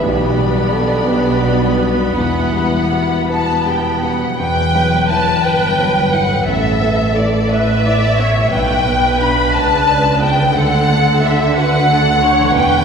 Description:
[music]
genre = cinematic, emotional film score for orchestra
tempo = 53-60 BPM (dotted quarters)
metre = 6/8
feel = rubato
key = E dorian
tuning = A4 = 439 Hz
[part]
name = warm French horn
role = melody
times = 0.0-4.0 s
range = E4 to A4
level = -22 LUFS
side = left 3 dB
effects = none
[part]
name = warm symphonic violin section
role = melody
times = 0.0-12.8 s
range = D5 to B5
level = -19 LUFS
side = left 1 dB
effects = none
[part]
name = dark studio violin section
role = second line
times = 0.0-12.8 s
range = D5 to B5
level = -20 LUFS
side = left 2 dB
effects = none
[part]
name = clear symphonic viola section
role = accompaniment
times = 0.0-12.8 s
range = B3 to D5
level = -21 LUFS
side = right 2 dB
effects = none
[part]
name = dark baby grand piano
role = accompaniment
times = 0.0-12.8 s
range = A1 to D5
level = -20 LUFS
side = equal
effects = none
[part]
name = concert harp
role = arpeggios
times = 0.0-12.8 s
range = A2 to D5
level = -25 LUFS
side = left 4 dB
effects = none
[part]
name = dark symphonic cello section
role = bass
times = 0.0-12.8 s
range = E2 to D3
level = -21 LUFS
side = right 3 dB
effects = none
[part]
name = rich symphonic double bass section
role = bass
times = 0.0-12.8 s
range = E1 to D2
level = -21 LUFS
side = right 2 dB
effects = none
[sound]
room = wet concert hall reverb, RT60 2.3 s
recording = recorded in a church or concert hall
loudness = -12 LUFS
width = side -6 dB against mid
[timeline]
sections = 0.0-4.4 A section; 4.4-12.8 A section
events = none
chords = 0.0 G/B; 2.2 Emadd9; 6.5 Asus2; 8.5 G/B; 10.6 D

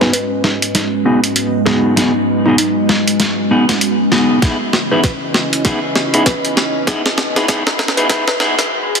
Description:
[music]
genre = glitch hop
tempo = 98 BPM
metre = 4/4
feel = swing 60% on 16ths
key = G# minor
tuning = A4 = 440 Hz
[part]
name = woody wave-folded pluck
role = melody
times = 0.0-8.7 s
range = D#4 to B4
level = -23 LUFS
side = equal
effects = chorus, cassette tape, digital delay
[part]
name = dark analog pad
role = sustained chords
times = 0.0-8.7 s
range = G#3 to D#5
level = -26 LUFS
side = equal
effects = chorus, vintage 12-bit sampler grit, sidechain pumping
[part]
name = semi-hollow electric guitar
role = stabs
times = 0.0-8.5 s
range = B3 to G#4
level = -17 LUFS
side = equal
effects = vintage 12-bit sampler grit, sidechain pumping, low-pass filter, digital delay
[part]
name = boom bap sampler-style drum kit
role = drums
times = 0.0-9.0 s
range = hi-hat, snare drum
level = -16 LUFS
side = equal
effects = none
[part]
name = warbly tape-like pad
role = texture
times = 0.0-8.7 s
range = G#3 to D#5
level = -19 LUFS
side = equal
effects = chorus, built-in reverb, phaser, sidechain pumping
[part]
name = electronic kick drum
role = drums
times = 4.4-8.2 s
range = none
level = -20 LUFS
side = equal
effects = none
[part]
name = swell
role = sound effects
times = 8.4-9.0 s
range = none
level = -25 LUFS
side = left 6 dB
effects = none
[sound]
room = moderate plate reverb, RT60 2.1 s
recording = dense, heavily limited modern master, high-pass filter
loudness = -12 LUFS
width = side -5 dB against mid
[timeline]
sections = 0.0-9.0 A section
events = build-up 0.0-9.0; drum fill 0.0-8.7; filter sweep on clean electric guitar 0.0-9.0; filter sweep on analog synth pad 0.0-9.0; filter sweep 0.0-9.0; swell 8.4-9.0; stop 8.7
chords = 0.0 G#m7; 4.4 C#m9

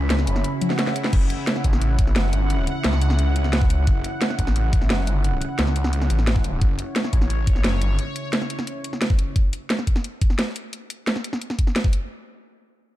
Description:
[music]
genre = dark technical drum and bass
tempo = 175 BPM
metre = 4/4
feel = straight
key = F# phrygian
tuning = A4 = 440 Hz
[part]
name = sweeping resonant pad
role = sustained chords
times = 0.0-9.3 s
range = C#3 to B5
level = -28 LUFS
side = right 1 dB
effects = chorus, sidechain pumping
[part]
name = snarling distorted saw bass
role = bass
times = 0.0-8.0 s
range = F#1 to C#2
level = -21 LUFS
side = equal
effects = distortion, overdrive, sidechain pumping
[part]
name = drum and bass drum kit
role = drums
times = 0.1-12.0 s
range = crash cymbal, hi-hat, snare drum, toms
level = -25 LUFS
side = equal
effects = overdrive, studio reverb
[part]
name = swell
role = sound effects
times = 0.5-1.1 s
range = none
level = -33 LUFS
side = equal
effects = none
[part]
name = electronic kick drum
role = drums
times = 1.1-11.9 s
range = none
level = -20 LUFS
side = equal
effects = studio reverb
[sound]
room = little or no reverb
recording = dark, warm production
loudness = -19 LUFS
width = side -14 dB against mid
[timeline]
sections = 0.0-12.1 A section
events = drop 0.0-12.1; swell 0.5-1.1; drum fill 0.6-1.1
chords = 0.0 F#5

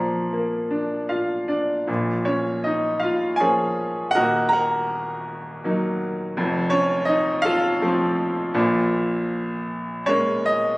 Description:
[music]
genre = classical, lyrical solo piano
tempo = 81 BPM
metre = 3/4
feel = uneven beats, rubato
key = Bb minor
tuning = A4 = 442 Hz
[part]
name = clear grand piano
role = solo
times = 0.0-10.8 s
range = Eb1 to Bb5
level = -20 LUFS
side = equal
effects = none
[sound]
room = light reverb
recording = recorded on a phone in the room, club reverb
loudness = -20 LUFS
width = side -22 dB against mid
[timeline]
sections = 0.0-1.9 A section; 1.9-10.8 B section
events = grand piano fill 0.7-1.9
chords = 0.0 Bb; 1.9 Bbm; 4.2 Ebm; 6.4 F; 8.6 Bbm7

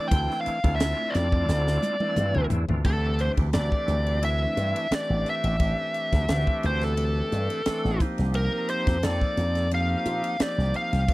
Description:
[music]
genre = electric jazz fusion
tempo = 88 BPM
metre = 4/4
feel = swing 53% on 16ths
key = D minor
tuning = A4 = 439 Hz
[part]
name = bluesy overdriven lead guitar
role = melody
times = 0.0-11.1 s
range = A4 to G5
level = -28 LUFS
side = equal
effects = distortion
[part]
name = bright tonewheel organ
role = accompaniment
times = 0.0-11.1 s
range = E3 to A4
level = -32 LUFS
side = right 1 dB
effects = slow rotary speaker
[part]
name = slap bass with an envelope filter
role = bass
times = 0.1-11.1 s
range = A1 to Bb2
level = -25 LUFS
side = equal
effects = none
[part]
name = crisp fusion drum kit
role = drums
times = 0.1-11.1 s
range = crash cymbal, hi-hat, kick drum, ride cymbal, snare drum, toms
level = -27 LUFS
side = equal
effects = none
[sound]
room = little or no reverb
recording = dry, close 1970s-style studio recording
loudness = -22 LUFS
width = side -19 dB against mid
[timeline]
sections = 0.0-2.9 A section; 2.9-11.1 B section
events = drum fill 1.5-2.9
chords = 0.0 Dm9; 2.9 D9sus4; 8.0 F9sus4

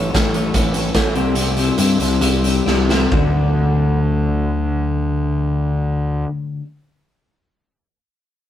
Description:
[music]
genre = indie rock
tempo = 128-151 BPM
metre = 4/4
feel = straight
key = D major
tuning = A4 = 440 Hz
[part]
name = twelve-string electric guitar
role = riff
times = 0.0-6.6 s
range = C3 to D5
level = -20 LUFS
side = left 4 dB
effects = vibrato effect
[part]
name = fuzz picked electric bass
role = bass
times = 0.0-6.2 s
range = A1 to G2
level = -19 LUFS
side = equal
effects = overdrive
[part]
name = raw garage drum kit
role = drums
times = 0.1-3.2 s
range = hi-hat, kick drum, snare drum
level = -20 LUFS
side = right 1 dB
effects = none
[sound]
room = moderate studio reverb, RT60 0.6 s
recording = rough rehearsal-room recording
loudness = -15 LUFS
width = side -11 dB against mid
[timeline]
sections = 0.0-3.1 A section; 3.1-6.9 B section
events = slowing down 0.0-3.1; drum fill 2.7-3.1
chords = 0.0 Aadd9; 1.2 C; 3.1 D

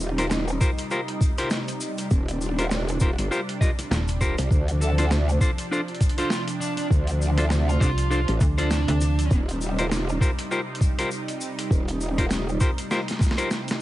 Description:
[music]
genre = glitch hop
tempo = 100 BPM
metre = 4/4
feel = swing 58% on 16ths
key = unclear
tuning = A4 = 440 Hz
[part]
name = warm analog pad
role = sustained chords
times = 0.0-13.8 s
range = C3 to Eb4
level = -32 LUFS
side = right 1 dB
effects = chorus, vintage 12-bit sampler grit, sidechain pumping
[part]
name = growl bass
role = bass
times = 0.0-12.6 s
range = Eb1 to D2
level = -24 LUFS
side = equal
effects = chorus
[part]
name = tube shaker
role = percussion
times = 0.0-13.8 s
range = none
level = -39 LUFS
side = left 2 dB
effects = none
[part]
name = clean electric guitar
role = stabs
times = 0.2-13.5 s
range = D4 to Eb5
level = -30 LUFS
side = left 1 dB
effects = warbly pitch drift, sidechain pumping, dub echo
[part]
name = boom bap sampler-style drum kit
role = drums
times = 0.2-13.8 s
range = hi-hat, snare drum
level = -30 LUFS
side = equal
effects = studio reverb
[part]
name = electronic kick drum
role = drums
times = 0.6-13.3 s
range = none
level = -22 LUFS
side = equal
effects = studio reverb
[part]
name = slap-like FM bass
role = bass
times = 3.9-9.3 s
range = Eb1 to D2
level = -23 LUFS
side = equal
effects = none
[part]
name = dark smooth lead guitar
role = melody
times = 4.8-9.4 s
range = D4 to A4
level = -32 LUFS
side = right 2 dB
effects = overdrive, dub echo
[sound]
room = digital ambience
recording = vinyl crackle, nothing above 10.9 kHz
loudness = -21 LUFS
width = side -15 dB against mid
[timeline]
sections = 0.0-13.8 A section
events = drum fill 12.9-13.8; break 13.5-13.8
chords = 0.0 Eb6; 4.5 Dm7; 9.3 Eb6

